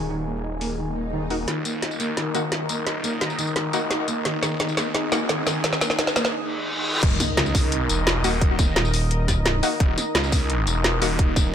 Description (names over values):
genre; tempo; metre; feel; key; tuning
dark technical drum and bass; 173 BPM; 4/4; straight; unclear; A4 = 440 Hz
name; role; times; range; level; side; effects
sweeping resonant pad; sustained chords; 0.0-11.5 s; Eb4 to Ab5; -30 LUFS; equal; chorus, sidechain pumping
snarling distorted saw bass; bass; 0.0-11.5 s; Eb1 to Eb2; -27 LUFS; equal; distortion, tube saturation, sidechain pumping, high-pass filter
felt-muted upright piano; arpeggios; 0.1-6.2 s; Eb3 to Eb4; -29 LUFS; equal; sidechain pumping, low-pass filter, ping-pong delay
drum and bass drum kit; drums; 0.6-11.4 s; crash cymbal, hi-hat, snare drum, tambourine; -24 LUFS; equal; low-pass filter on hats, low-pass filter on snare, low-pass filter on perc, low-pass filter on cymbals, low-pass filter on room
swell, riser, reverse cymbal and impact; sound effects; 0.9-8.4 s; none; -31 LUFS; equal; none
orchestra-hit-like synth stab; stabs; 1.3-5.2, 8.2-11.1 s; Bb3 to Gb4; -29 LUFS; left 3 dB; built-in reverb, ping-pong delay
electronic kick drum; drums; 7.0-11.4 s; none; -20 LUFS; equal; none
growling FM bass; bass; 8.8-9.6 s; Eb1; -22 LUFS; equal; none
room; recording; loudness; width
light reverb, digital ambience; none; -20 LUFS; side -9 dB against mid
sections
0.0-1.5 A section; 1.5-7.0 B section; 7.0-11.5 C section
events
filter sweep on synth stab 0.0-1.5; swell 0.9-1.5; build-up 1.5-7.0; drum fill 1.5-6.3; filter sweep on felt piano 1.5-7.0; break 6.3-7.0; reverse cymbal 6.3-7.0; drop 7.0-11.5; impact 7.0-8.4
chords
0.0 Eb5